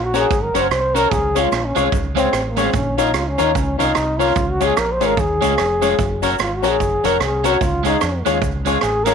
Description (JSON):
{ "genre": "ska", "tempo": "148 BPM", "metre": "4/4", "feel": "swing 60% on 8ths", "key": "Db major", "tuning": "A4 = 440 Hz", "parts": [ { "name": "breathy trombone", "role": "melody", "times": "0.0-9.1 s", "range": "Bb3 to C5", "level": "-20 LUFS", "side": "equal", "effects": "none" }, { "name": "fingered electric bass", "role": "bass", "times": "0.0-9.1 s", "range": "F1 to F2", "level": "-24 LUFS", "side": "equal", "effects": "none" }, { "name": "electric guitar at the edge of break-up", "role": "accompaniment", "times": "0.1-9.1 s", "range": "Ab3 to Bb4", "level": "-24 LUFS", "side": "right 15 dB", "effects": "none" }, { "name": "clear upright piano", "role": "stabs", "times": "0.1-9.1 s", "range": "Db4 to Db5", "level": "-21 LUFS", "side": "left 12 dB", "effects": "slapback echo" }, { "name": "cabasa", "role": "percussion", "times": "0.1-9.1 s", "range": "none", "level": "-39 LUFS", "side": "right 19 dB", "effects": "none" }, { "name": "street-band drum kit", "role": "drums", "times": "0.2-9.1 s", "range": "hi-hat, kick drum, rim click", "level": "-23 LUFS", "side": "right 4 dB", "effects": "slapback echo" } ], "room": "moderate spring reverb, RT60 2.0 s, small room ambience", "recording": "1960s-style stereo with parts hard left and right", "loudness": "-15 LUFS", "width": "side -6 dB against mid", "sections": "0.0-9.1 A section", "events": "trombone solo 0.0-9.1", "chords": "0.0 Gb; 1.1 Db; 2.7 Bbm; 4.4 Db; 6.0 Gb; 7.6 Db" }